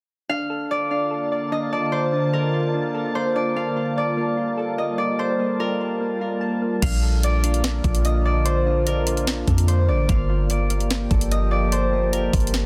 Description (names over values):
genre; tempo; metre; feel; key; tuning
hip hop, atmospheric cloud-rap; 147 BPM; 4/4; half-time; Bb major; A4 = 438 Hz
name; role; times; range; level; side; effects
concert harp; melody; 0.3-12.7 s; Bb4 to F5; -27 LUFS; equal; digital delay
glassy FM pad; sustained chords; 0.9-12.7 s; D3 to A5; -29 LUFS; equal; ensemble chorus, built-in reverb, sidechain pumping
soft electric-piano-like synth keys; arpeggios; 0.3-12.7 s; Bb3 to A5; -32 LUFS; equal; chorus, digital delay
soft 808-style bass; bass; 6.8-12.7 s; G1 to F2; -23 LUFS; equal; none
trap drum kit; drums; 6.8-12.6 s; crash cymbal, hi-hat, kick drum, snare drum; -26 LUFS; equal; none
room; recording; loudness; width
digital ambience; dense, heavily limited modern master; -22 LUFS; mono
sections
0.3-6.8 A section; 6.8-12.7 B section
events
none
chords
0.3 Bbmaj7; 3.6 Gm9; 6.8 Bbmaj7; 10.1 Gm9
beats
| 0.29 0.70 1.11 1.52 | 1.93 2.33 2.74 3.15 | 3.56 3.97 4.38 4.78 | 5.19 5.60 6.01 6.42 | 6.83 7.23 7.64 8.05 | 8.46 8.87 9.27 9.68 | 10.09 10.50 10.91 11.31 | 11.72 12.13 12.54